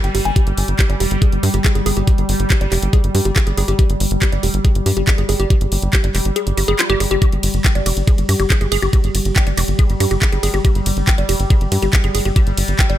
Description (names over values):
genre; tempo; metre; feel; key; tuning
psychedelic trance; 140 BPM; 4/4; straight; unclear; A4 = 436 Hz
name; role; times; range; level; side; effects
bubbling stepped-filter texture; sustained chords; 0.0-13.0 s; G3; -24 LUFS; right 1 dB; chorus, built-in reverb, sidechain pumping
woody wave-folded pluck; riff; 0.0-12.9 s; F4 to Ab5; -23 LUFS; moving between left 5 dB and right 6 dB; chorus, auto-pan, sidechain pumping, dub echo
tight sequencer bass; bass; 0.0-13.0 s; F1 to G2; -18 LUFS; equal; none
drum and bass drum kit; drums; 0.0-13.0 s; handclaps, hi-hat, ride cymbal; -22 LUFS; equal; none
electronic kick drum; drums; 0.4-12.9 s; none; -14 LUFS; equal; none
room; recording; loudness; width
digital ambience; none; -14 LUFS; side -12 dB against mid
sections
0.0-13.0 A section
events
kick drops out 6.4-7.2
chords
0.0 G5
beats
| 0.36 0.79 1.22 1.65 | 2.08 2.50 2.93 3.36 | 3.79 4.22 4.65 5.08 | 5.50 5.93 6.36 6.79 | 7.22 7.65 8.07 8.50 | 8.93 9.36 9.79 10.22 | 10.65 11.07 11.50 11.93 | 12.36 12.79